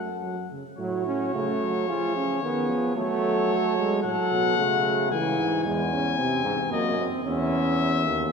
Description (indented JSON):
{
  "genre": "classical, imitative canzona for brass ensemble",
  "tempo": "112 BPM",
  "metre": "4/4",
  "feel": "straight",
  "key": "F# minor",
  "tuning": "A4 = 436 Hz",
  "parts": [
    { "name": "bright trumpet", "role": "melody", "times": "0.0-8.3 s", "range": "C#5 to G#5", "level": "-28 LUFS", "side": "left 7 dB", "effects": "none" },
    { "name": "mellow flugelhorn", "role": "second line", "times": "0.0-5.1 s", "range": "F#4 to A4", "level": "-32 LUFS", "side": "right 3 dB", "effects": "none" },
    { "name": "warm trombone", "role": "accompaniment", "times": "0.0-8.0 s", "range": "C#3 to F4", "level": "-27 LUFS", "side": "right 1 dB", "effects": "none" },
    { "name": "clear bass trombone", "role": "bass", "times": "0.0-8.3 s", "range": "C#2 to F#3", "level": "-28 LUFS", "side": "right 2 dB", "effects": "none" }
  ],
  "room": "wet church reverb, RT60 3.4 s",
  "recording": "heard from further back in the room",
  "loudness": "-23 LUFS",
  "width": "side -5 dB against mid",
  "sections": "0.8-8.3 A section",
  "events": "none",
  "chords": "0.0 F#m; 0.8 F#m/A; 1.9 Fdim; 3.0 F#m; 4.0 F#m/A; 5.1 C#m; 6.2 Cdim; 7.2 C#m/E",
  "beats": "0.23 | 0.79 1.34 1.89 2.42 | 2.96 3.50 4.04 4.58 | 5.11 5.64 6.18 6.71 | 7.25 7.79"
}